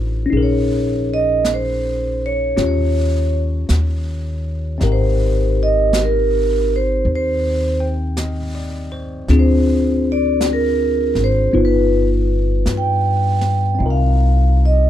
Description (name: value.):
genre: jazz ballad.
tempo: 54 BPM.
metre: 4/4.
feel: swing 67% on 8ths.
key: unclear.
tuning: A4 = 440 Hz.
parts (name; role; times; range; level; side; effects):
tine electric piano; accompaniment; 0.0-14.9 s; B3 to G5; -21 LUFS; left 3 dB; phaser.
upright bass; bass; 0.0-14.9 s; G1 to G2; -18 LUFS; equal; none.
jazz brush drum kit; drums; 0.3-14.9 s; brushed snare drum, hi-hat, snare drum; -28 LUFS; right 1 dB; none.
vibraphone with medium mallets; melody; 0.4-14.9 s; Bb4 to G5; -19 LUFS; right 3 dB; none.
room: little or no reverb.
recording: dark, warm production.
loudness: -15 LUFS.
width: side -11 dB against mid.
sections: 0.0-14.9 A section.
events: vibraphone solo 0.0-14.9.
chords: 0.3 Bbm7; 2.6 Eb9; 4.8 Abmaj9; 9.3 Dm7b5; 11.5 Gaug7; 13.8 Cm7.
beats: | 0.32 1.44 2.56 3.69 | 4.80 5.92 7.05 8.17 | 9.29 10.41 11.53 12.66 | 13.80.